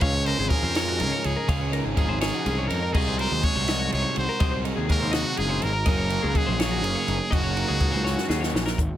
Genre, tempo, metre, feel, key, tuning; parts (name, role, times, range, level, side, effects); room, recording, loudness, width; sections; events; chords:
math rock and midwest emo; 82 BPM (dotted quarters); 6/8; straight; Gb lydian; A4 = 440 Hz
brilliant trumpet; melody; 0.0-8.5 s; Gb4 to Db5; -28 LUFS; equal
twelve-string electric guitar; accompaniment; 0.0-9.0 s; Gb2 to Ab4; -32 LUFS; right 6 dB
twelve-string electric guitar; arpeggios; 0.0-8.8 s; Gb4 to F5; -32 LUFS; left 6 dB
biting overdriven guitar; riff; 0.0-8.6 s; C3 to Eb4; -32 LUFS; equal
fuzz picked electric bass; bass; 0.0-8.9 s; Gb1 to F2; -27 LUFS; equal; overdrive
compact cocktail drum kit; drums; 0.0-8.9 s; crash cymbal, hi-hat, kick drum, ride cymbal, snare drum; -27 LUFS; equal
little or no reverb; -22 LUFS; side -12 dB against mid
0.0-8.8 A section
drum fill 8.1-8.8
0.0 Dbmaj9; 2.9 Gb69